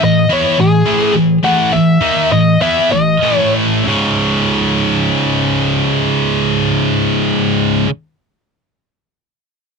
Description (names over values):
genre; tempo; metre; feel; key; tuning
metal; 93-108 BPM; 4/4; straight; C# minor; A4 = 439 Hz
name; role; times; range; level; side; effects
high-gain lead guitar; melody; 0.0-3.5 s; G#4 to F#5; -15 LUFS; left 2 dB; distortion, tape echo
high-gain distorted guitar; riff; 0.0-7.9 s; C#2 to E4; -12 LUFS; equal; distortion
room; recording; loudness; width
light reverb; dry, close 1970s-style studio recording; -11 LUFS; side -5 dB against mid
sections
0.0-3.9 A section; 3.9-9.0 B section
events
slowing down 0.0-3.9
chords
0.0 A5; 3.9 C#5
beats
0.31 0.87 | 1.44 2.02 2.62 3.23 | 3.86 4.50 5.14 5.79 | 6.43 7.07 7.71